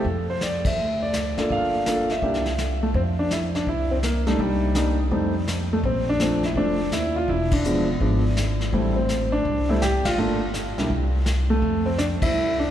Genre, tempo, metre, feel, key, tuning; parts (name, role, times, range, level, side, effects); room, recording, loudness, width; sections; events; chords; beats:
jazz piano trio; 166 BPM; 4/4; swing 66% on 8ths; F major; A4 = 441 Hz
warm concert grand piano; melody; 0.0-12.7 s; F3 to F5; -23 LUFS; equal
upright bass; bass; 0.0-12.7 s; E1 to F2; -25 LUFS; equal
vintage brush drum kit; drums; 0.0-12.7 s; brushed snare drum, hi-hat, kick drum, ride cymbal, snare drum; -30 LUFS; left 1 dB
wet cathedral reverb, RT60 7.3 s; recorded in a church or concert hall; -20 LUFS; side -11 dB against mid
0.0-2.9 A section; 2.9-12.7 A section
band accent 0.6, 7.5, 10.0, 12.2
0.0 F; 0.8 D; 1.5 Gm7; 2.2 C9; 2.9 F5; 4.4 Cm7; 5.1 F9; 5.8 Bbmaj7; 7.3 E7b9; 8.7 Am7; 10.2 Gm9; 10.9 N.C.; 11.6 Fmaj7
| 0.04 0.41 0.77 1.13 | 1.49 1.85 2.22 2.58 | 2.94 3.30 3.66 4.03 | 4.39 4.75 5.11 5.47 | 5.83 6.20 6.56 6.92 | 7.28 7.64 8.00 8.37 | 8.73 9.09 9.45 9.81 | 10.17 10.54 10.90 11.26 | 11.62 11.98 12.34 12.70